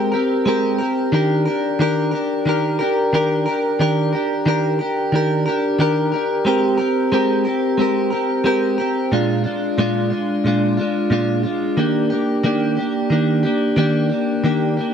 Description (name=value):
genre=indie pop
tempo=90 BPM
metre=4/4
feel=straight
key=Eb major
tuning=A4 = 440 Hz
part: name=direct-recorded clean electric guitar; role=solo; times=0.0-14.9 s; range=Bb2 to Bb4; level=-16 LUFS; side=equal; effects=lush chorus, warbly pitch drift
room=moderate plate reverb, RT60 3.0 s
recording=dark, warm production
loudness=-16 LUFS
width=side -7 dB against mid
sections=0.0-11.8 A section; 11.8-14.9 B section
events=none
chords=0.0 Abmaj9; 1.1 Ebmaj7; 6.5 Abmaj9; 9.1 Bb7; 11.8 Ebmaj7